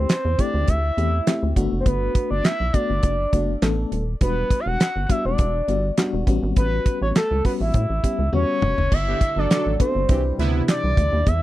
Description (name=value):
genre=early-eighties boogie funk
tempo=102 BPM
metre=4/4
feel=straight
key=unclear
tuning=A4 = 440 Hz
part: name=expressive synth lead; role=melody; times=0.0-11.4 s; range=A4 to F#5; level=-24 LUFS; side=equal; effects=chorus, tape echo
part: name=FM electric piano with auto-pan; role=accompaniment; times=0.0-10.9 s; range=G3 to B4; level=-27 LUFS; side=left 4 dB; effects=none
part: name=rubbery square bass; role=bass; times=0.0-11.4 s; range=D#1 to A2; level=-23 LUFS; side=equal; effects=none
part: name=damped 70s drum kit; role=drums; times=0.1-11.4 s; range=crash cymbal, handclaps, hi-hat, kick drum, snare drum, toms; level=-20 LUFS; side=equal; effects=none
part: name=warm analog pad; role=sustained chords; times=9.2-11.4 s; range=B2 to F#4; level=-33 LUFS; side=left 1 dB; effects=chorus
part: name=analog synth brass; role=second line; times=9.1-10.6 s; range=C3 to A4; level=-27 LUFS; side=right 4 dB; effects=chorus
room=light reverb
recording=dry, close 1970s-style studio recording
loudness=-19 LUFS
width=side -15 dB against mid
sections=0.0-8.9 A section; 8.9-11.4 B section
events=drum fill 8.3-8.9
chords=0.0 D9sus4; 1.6 Gmaj9; 4.2 Em9; 6.3 A13; 8.9 Gmaj9; 10.1 Cmaj7